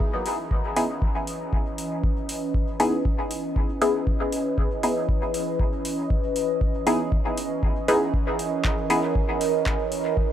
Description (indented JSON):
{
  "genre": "dub techno",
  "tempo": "118 BPM",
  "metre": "4/4",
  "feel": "straight",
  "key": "unclear",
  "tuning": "A4 = 442 Hz",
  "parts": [
    { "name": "warbly tape-like pad", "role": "sustained chords", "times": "0.4-10.3 s", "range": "E3 to D#5", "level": "-27 LUFS", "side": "right 1 dB", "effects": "chorus, built-in reverb, phaser, sidechain pumping" },
    { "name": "filtered dub chord stab", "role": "stabs", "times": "0.0-9.0 s", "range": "B3 to G#4", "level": "-26 LUFS", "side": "left 1 dB", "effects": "chorus, phaser, sidechain pumping, dub echo" },
    { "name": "electronic kick drum", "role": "drums", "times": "0.0-10.3 s", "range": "none", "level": "-25 LUFS", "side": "equal", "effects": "none" },
    { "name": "booming analog drum machine", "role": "drums", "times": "0.3-10.0 s", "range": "handclaps, hi-hat", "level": "-33 LUFS", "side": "equal", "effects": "dub echo" }
  ],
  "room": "digital ambience",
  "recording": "dry, gritty hardware recording",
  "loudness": "-22 LUFS",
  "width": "side -10 dB against mid",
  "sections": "0.0-10.3 A section",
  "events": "none",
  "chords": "0.0 C#m9",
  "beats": "| 0.00 0.51 1.02 1.53 | 2.04 2.54 3.05 3.56 | 4.07 4.58 5.09 5.59 | 6.10 6.61 7.12 7.63 | 8.14 8.65 9.15 9.66 | 10.17"
}